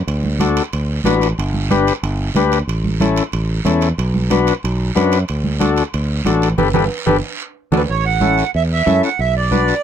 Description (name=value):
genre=latin, cumbia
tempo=184 BPM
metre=4/4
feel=straight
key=D major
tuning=A4 = 439 Hz
part: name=fingered electric bass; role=bass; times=0.1-9.7 s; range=G1 to F#2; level=-18 LUFS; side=right 1 dB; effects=none
part: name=guiro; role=percussion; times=0.1-9.8 s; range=none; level=-30 LUFS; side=right 6 dB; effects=none
part: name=timbales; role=percussion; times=0.1-7.8 s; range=none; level=-28 LUFS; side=right 7 dB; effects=none
part: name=congas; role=percussion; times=0.2-9.7 s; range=none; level=-20 LUFS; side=right 5 dB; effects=none
part: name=overdriven combo organ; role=accompaniment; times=0.4-9.7 s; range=C#4 to B4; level=-16 LUFS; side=left 6 dB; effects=none
part: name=accordion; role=melody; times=7.7-9.8 s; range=B4 to F#5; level=-17 LUFS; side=right 8 dB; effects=none
room=light reverb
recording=none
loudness=-14 LUFS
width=side -9 dB against mid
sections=0.0-7.9 A section; 7.9-9.8 B section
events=band accent 6.6-7.9; transistor combo organ fill 6.9-7.9; drum fill 7.1-7.9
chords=0.1 D; 1.4 G; 2.7 A; 4.0 Bm; 5.3 D; 6.6 Gadd9; 7.2 D; 7.9 A; 9.2 Bm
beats=| 0.07 0.40 0.72 1.05 | 1.38 1.70 2.03 2.35 | 2.68 3.00 3.33 3.66 | 3.98 4.31 4.63 4.96 | 5.29 5.61 5.94 6.26 | 6.59 6.91 7.24 7.57 | 7.89 8.22 8.54 8.87 | 9.19 9.52